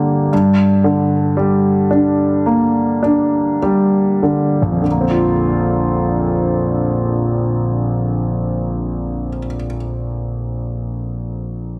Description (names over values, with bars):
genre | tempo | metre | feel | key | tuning
pop | 47-60 BPM | 4/4 | straight | Bb major | A4 = 440 Hz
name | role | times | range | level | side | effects
warm concert grand piano | accompaniment | 0.0-11.8 s | Bb1 to G4 | -17 LUFS | equal | none
room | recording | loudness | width
moderate concert hall reverb, RT60 2.4 s | dense, heavily limited modern master | -17 LUFS | mono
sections
0.0-4.9 A section; 4.9-10.0 B section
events
slowing down 0.0-4.9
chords
0.0 Gm; 4.9 Bbadd9